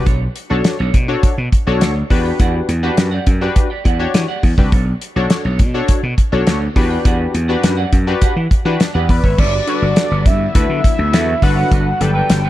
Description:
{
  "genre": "early-eighties boogie funk",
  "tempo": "103 BPM",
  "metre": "4/4",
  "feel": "straight",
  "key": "unclear",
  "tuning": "A4 = 439 Hz",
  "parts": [
    { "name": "funky polysynth comp", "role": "accompaniment", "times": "0.0-12.4 s", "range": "F#3 to E5", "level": "-21 LUFS", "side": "left 3 dB", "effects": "chorus" },
    { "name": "gritty slap bass", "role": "bass", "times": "0.0-12.5 s", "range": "G1 to E3", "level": "-18 LUFS", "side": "equal", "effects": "overdrive" },
    { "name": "semi-hollow electric guitar", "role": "riff", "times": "0.1-12.5 s", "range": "D4 to G5", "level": "-28 LUFS", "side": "right 5 dB", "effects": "wide subtle chorus" },
    { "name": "damped 70s drum kit", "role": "drums", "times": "0.1-12.4 s", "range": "crash cymbal, hi-hat, kick drum, snare drum", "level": "-15 LUFS", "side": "equal", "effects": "none" },
    { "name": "fat analog lead", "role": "melody", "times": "9.1-12.5 s", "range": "B4 to G5", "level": "-19 LUFS", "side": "equal", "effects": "chorus" },
    { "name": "phased string machine", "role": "sustained chords", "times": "9.4-12.5 s", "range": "D3 to F#4", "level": "-26 LUFS", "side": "left 2 dB", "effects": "ensemble chorus, phaser" }
  ],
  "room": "studio reverb",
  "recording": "dark, warm production",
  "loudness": "-13 LUFS",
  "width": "side -14 dB against mid",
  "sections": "0.0-9.4 A section; 9.4-12.5 B section",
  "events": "none",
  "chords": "0.1 Bm9; 2.1 Em9; 4.7 Bm9; 6.8 Em9; 9.4 Gmaj7; 10.5 D69; 11.4 Gmaj7"
}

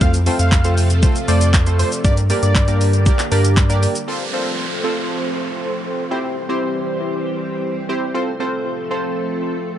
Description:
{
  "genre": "dance-pop",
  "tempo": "118 BPM",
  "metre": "4/4",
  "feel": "straight",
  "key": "F major",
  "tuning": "A4 = 440 Hz",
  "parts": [
    { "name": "wide unison lead", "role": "melody", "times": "0.0-2.8 s", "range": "C5 to F5", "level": "-26 LUFS", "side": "equal", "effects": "sidechain pumping, analog delay" },
    { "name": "funky polysynth comp", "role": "accompaniment", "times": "0.0-9.6 s", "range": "A3 to D5", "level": "-23 LUFS", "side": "right 1 dB", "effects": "chorus, sidechain pumping, analog delay" },
    { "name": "string machine, full ensemble", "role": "sustained chords", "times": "0.0-9.8 s", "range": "C3 to C5", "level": "-25 LUFS", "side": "equal", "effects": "ensemble chorus, sidechain pumping" },
    { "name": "saturated sub bass", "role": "bass", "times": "0.0-3.9 s", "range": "F2 to G2", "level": "-16 LUFS", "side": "equal", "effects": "sidechain pumping" },
    { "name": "pop drum kit", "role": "drums", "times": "0.0-4.1 s", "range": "handclaps, hi-hat, kick drum, shaker", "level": "-17 LUFS", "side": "equal", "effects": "overdrive" },
    { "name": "downlifter", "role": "sound effects", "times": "4.1-8.1 s", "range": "none", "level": "-29 LUFS", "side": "right 1 dB", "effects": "none" }
  ],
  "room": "light reverb",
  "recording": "echo-heavy mix, nothing above 11.0 kHz",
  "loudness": "-16 LUFS",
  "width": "side -11 dB against mid",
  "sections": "0.0-4.1 A section; 4.1-9.8 B section",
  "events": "drop 0.0-4.1",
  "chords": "0.0 F; 2.0 Gm; 4.1 F; 6.1 C; 8.1 F"
}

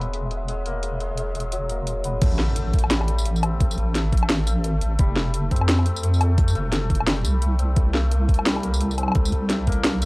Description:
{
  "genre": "half-time drum and bass",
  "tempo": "173 BPM",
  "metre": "4/4",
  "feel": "swing 59% on 16ths, half-time",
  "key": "unclear",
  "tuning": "A4 = 440 Hz",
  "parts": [
    { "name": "santur", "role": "arpeggios", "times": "0.0-10.1 s", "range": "F#3 to C4", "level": "-30 LUFS", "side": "left 3 dB", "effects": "analog delay" },
    { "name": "deep soft wobble bass", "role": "bass", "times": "0.0-10.1 s", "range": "E1 to F2", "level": "-22 LUFS", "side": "equal", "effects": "chorus" },
    { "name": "drum and bass drum kit", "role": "drums", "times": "0.0-10.1 s", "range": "crash cymbal, hi-hat, snare drum, tambourine, woodblock", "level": "-25 LUFS", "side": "equal", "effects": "overdrive" },
    { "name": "pulsing gated texture", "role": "texture", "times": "0.0-2.2 s", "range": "E5", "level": "-42 LUFS", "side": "right 1 dB", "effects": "none" },
    { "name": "electronic kick drum", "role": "drums", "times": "2.2-9.8 s", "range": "none", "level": "-20 LUFS", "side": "equal", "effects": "overdrive" },
    { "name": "impact", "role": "sound effects", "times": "2.2-3.6 s", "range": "none", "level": "-31 LUFS", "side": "equal", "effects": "none" }
  ],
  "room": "digital ambience",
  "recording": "dry, gritty hardware recording, cassette tape, low-pass filter",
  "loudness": "-19 LUFS",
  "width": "side -24 dB against mid",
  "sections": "0.0-2.2 A section; 2.2-10.1 B section",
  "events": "drop 2.2-10.1; impact 2.2-3.6",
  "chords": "0.0 E; 2.2 Am; 5.0 Fadd9; 7.8 C5"
}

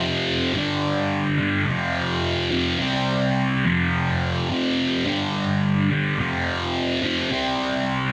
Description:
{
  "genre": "rock",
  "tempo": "106 BPM",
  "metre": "4/4",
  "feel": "straight",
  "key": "unclear",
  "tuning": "A4 = 440 Hz",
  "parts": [
    { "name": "thick fuzz guitar", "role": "solo", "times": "0.0-8.1 s", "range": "F2 to C4", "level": "-22 LUFS", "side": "equal", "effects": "distortion, phaser" }
  ],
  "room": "moderate studio reverb, RT60 0.6 s",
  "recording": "none",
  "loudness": "-22 LUFS",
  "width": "mono",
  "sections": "0.0-8.1 A section",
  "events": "none",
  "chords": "0.0 F5; 0.5 G5; 1.7 F5; 2.8 C5; 3.7 F5; 5.1 G5; 6.2 F5; 7.3 C5"
}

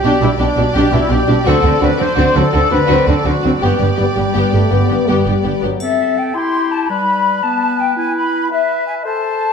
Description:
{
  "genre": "cinematic, heroic adventure film score",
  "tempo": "111 BPM (dotted quarters)",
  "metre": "12/8",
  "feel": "straight",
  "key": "G major, C major from 5.8 s",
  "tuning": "A4 = 438 Hz",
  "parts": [
    { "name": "clear symphonic violin section", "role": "melody", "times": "0.0-5.6 s", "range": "D5", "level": "-25 LUFS", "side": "left 6 dB", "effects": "none" },
    { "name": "warm symphonic violin section", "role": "second line", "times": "0.0-5.7 s", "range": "F#4 to G4", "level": "-23 LUFS", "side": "left 3 dB", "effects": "none" },
    { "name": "warm trumpet section", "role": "stabs", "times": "0.0-5.3 s", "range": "D4 to C5", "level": "-18 LUFS", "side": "equal", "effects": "none" },
    { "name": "dark symphonic double bass section", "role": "bass", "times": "0.0-5.7 s", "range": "G1 to D2", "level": "-18 LUFS", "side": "right 3 dB", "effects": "none" },
    { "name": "warm symphonic cello section", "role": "bass", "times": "0.0-5.7 s", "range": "G2 to D3", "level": "-18 LUFS", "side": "right 2 dB", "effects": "none" },
    { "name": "warm symphonic viola section", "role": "accompaniment", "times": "0.1-5.7 s", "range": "B3 to D4", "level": "-20 LUFS", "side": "left 1 dB", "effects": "none" },
    { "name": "warm French horn section", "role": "sustained chords", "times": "0.2-5.8 s", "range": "F#3 to D4", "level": "-21 LUFS", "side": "left 5 dB", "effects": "none" },
    { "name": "clear oboe", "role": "second line", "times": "5.8-9.5 s", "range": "G4 to C5", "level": "-23 LUFS", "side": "right 1 dB", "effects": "none" },
    { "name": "flute section", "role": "second line", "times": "5.8-9.5 s", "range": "E5 to C6", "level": "-17 LUFS", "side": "left 5 dB", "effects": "none" },
    { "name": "warm clarinet", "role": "second line", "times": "5.8-9.5 s", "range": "G3 to E5", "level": "-20 LUFS", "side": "left 2 dB", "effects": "none" },
    { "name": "triangle", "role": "percussion", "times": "5.8-6.5 s", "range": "none", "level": "-38 LUFS", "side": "left 2 dB", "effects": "none" }
  ],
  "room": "moderate scoring stage reverb, RT60 1.8 s",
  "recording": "dark, warm production",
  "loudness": "-12 LUFS",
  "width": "side -6 dB against mid",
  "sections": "0.0-5.8 A section; 5.8-9.5 B section",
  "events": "none",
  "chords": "0.0 G/B; 1.5 D7; 3.6 G; 5.8 C; 6.9 G; 8.0 E5"
}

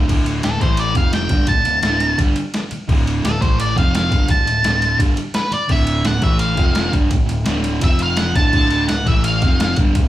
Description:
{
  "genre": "garage rock duo or trio",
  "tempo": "171 BPM",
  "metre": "4/4",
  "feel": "straight",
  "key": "unclear",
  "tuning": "A4 = 439 Hz",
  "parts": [
    { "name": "fuzz guitar", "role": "riff", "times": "0.0-10.1 s", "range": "D2 to A3", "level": "-21 LUFS", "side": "right 1 dB", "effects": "distortion" },
    { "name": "growling picked electric bass", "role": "bass", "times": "0.0-10.1 s", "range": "D1 to A1", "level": "-23 LUFS", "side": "equal", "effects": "overdrive, tube saturation" },
    { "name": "boom bap sampler-style drum kit", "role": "drums", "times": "0.1-10.1 s", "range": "crash cymbal, kick drum, ride cymbal, snare drum", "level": "-18 LUFS", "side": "equal", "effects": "overdrive" },
    { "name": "octave-fuzz lead guitar", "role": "melody", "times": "0.4-9.8 s", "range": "A4 to A5", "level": "-20 LUFS", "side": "equal", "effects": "distortion" }
  ],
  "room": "moderate large studio reverb, RT60 0.9 s",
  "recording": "band playing live in one room",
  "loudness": "-14 LUFS",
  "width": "side -14 dB against mid",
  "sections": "0.1-10.1 A section",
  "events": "lead electric guitar solo 0.1-10.1",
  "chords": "0.1 D5; 0.6 A5; 1.0 F5; 1.3 D5; 3.4 A5; 3.8 F5; 4.1 D5; 6.2 A5; 6.6 F5; 6.9 D5; 7.8 F5; 8.4 D5; 9.1 A5; 9.4 F5"
}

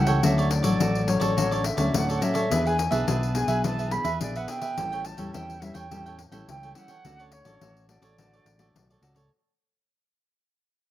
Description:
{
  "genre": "samba and choro",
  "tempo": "106 BPM",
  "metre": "4/4",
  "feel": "straight",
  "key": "D major",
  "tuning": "A4 = 440 Hz",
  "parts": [
    { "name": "concert flute", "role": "melody", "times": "0.0-9.0 s", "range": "C#5 to B5", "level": "-31 LUFS", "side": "equal", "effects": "slapback echo" },
    { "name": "cavaquinho", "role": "accompaniment", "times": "0.0-9.3 s", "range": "D4 to G5", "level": "-31 LUFS", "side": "right 5 dB", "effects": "slapback echo" },
    { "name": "nylon-string guitar", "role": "accompaniment", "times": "0.0-9.3 s", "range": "A2 to G#4", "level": "-29 LUFS", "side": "left 2 dB", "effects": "slapback echo" },
    { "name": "fingered electric bass", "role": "bass", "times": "0.0-9.3 s", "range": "A1 to E2", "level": "-28 LUFS", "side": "equal", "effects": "none" },
    { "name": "pandeiro", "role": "percussion", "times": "0.1-9.3 s", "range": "none", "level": "-30 LUFS", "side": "left 5 dB", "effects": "none" }
  ],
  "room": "little or no reverb",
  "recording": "recorded outdoors, with no room sound",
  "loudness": "-22 LUFS",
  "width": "side -13 dB against mid",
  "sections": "0.0-9.3 A section",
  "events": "fade-out 0.0-9.3",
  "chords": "0.2 Dmaj7; 2.5 E7; 4.8 A7; 7.0 Dmaj7"
}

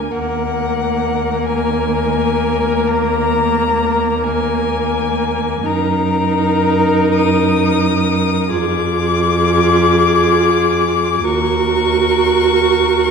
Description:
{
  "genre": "classical, slow romantic movement for string quartet",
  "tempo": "44 BPM (dotted quarters)",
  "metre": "12/8",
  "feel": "rubato",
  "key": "Eb minor",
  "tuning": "A4 = 439 Hz",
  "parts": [
    { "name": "warm violin", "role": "melody", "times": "0.0-13.1 s", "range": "Gb5 to Eb6", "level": "-19 LUFS", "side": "left 8 dB", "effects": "none" },
    { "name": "rich violin", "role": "second line", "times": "0.0-13.1 s", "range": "Ab4 to Bb4", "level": "-19 LUFS", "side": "left 2 dB", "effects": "none" },
    { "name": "warm viola", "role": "accompaniment", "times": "0.0-13.1 s", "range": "Bb3 to Gb4", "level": "-18 LUFS", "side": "right 3 dB", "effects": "none" },
    { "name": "rich cello", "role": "bass", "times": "0.0-13.1 s", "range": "D2 to Gb2", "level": "-20 LUFS", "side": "right 3 dB", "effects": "none" }
  ],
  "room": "wet scoring stage reverb, RT60 1.8 s",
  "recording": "minimal, uncompressed stereo recording",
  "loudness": "-13 LUFS",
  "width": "side -6 dB against mid",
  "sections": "0.0-13.1 A section",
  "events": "none",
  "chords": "0.1 Ebm; 5.6 Ebm/Gb; 8.5 Ddim/F; 11.3 Ebm"
}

